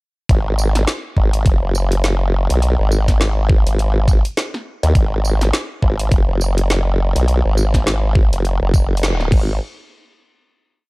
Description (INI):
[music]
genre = glitch hop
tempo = 103 BPM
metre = 4/4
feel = swing 58% on 16ths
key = G# minor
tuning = A4 = 440 Hz
[part]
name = formant-sweep wobble bass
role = bass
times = 0.3-9.6 s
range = F#1 to D#2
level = -16 LUFS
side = equal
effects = chorus, overdrive
[part]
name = drum and bass drum kit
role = drums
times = 0.3-9.5 s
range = crash cymbal, hi-hat, snare drum, tambourine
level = -23 LUFS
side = equal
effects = overdrive, studio reverb
[part]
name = electronic kick drum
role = drums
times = 0.3-9.5 s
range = none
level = -15 LUFS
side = equal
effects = overdrive, studio reverb
[sound]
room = digital ambience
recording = dry, gritty hardware recording, cassette tape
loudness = -14 LUFS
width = side -25 dB against mid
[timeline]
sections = 0.3-9.6 drop; 9.6-10.9 final hit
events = drop 0.3-9.6; band accent 9.0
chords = none